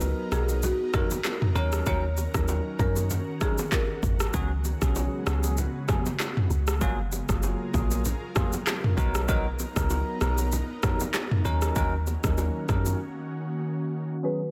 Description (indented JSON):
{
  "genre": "afrobeats",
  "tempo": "97 BPM",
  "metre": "4/4",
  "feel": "swing 55% on 16ths",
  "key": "unclear",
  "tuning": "A4 = 442 Hz",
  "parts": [
    { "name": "bell-like tine electric piano", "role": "accompaniment", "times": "0.0-14.4 s", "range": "Gb3 to Bb4", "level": "-35 LUFS", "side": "equal", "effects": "lush chorus" },
    { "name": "ethereal airy pad", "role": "sustained chords", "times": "0.1-14.5 s", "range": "Db3 to Bb4", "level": "-38 LUFS", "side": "equal", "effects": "ensemble chorus, built-in reverb" },
    { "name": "deep log drum bass", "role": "bass", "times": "0.0-13.0 s", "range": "Gb1 to Gb2", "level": "-30 LUFS", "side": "equal", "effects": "none" },
    { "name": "deep house drum kit", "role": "drums", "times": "0.0-13.0 s", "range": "handclaps, kick drum, rim click, shaker, toms", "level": "-30 LUFS", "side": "equal", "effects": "overdrive" },
    { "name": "bongos and congas", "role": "percussion", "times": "0.0-13.0 s", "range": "none", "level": "-39 LUFS", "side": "equal", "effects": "none" },
    { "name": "marimba with medium mallets", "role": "melody", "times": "0.3-4.2, 14.2-14.5 s", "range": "Gb4 to Db5", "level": "-35 LUFS", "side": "equal", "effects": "digital delay" }
  ],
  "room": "little or no reverb",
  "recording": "dense, heavily limited modern master, low-pass filter",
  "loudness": "-27 LUFS",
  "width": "mono",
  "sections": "0.0-14.2 A section",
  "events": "break 13.0-14.2",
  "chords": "0.0 Cbmaj7; 1.6 Ebm7; 4.3 Db7sus4; 6.8 Gbmaj9; 9.0 Cbmaj7; 11.5 Ebm7",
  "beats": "0.01 0.63 1.25 | 1.86 2.48 3.10 3.72 | 4.34 4.96 5.58 6.20 | 6.81 7.43 8.05 8.67 | 9.29 9.91 10.53 11.14 | 11.76 12.38 13.00 13.62 | 14.24"
}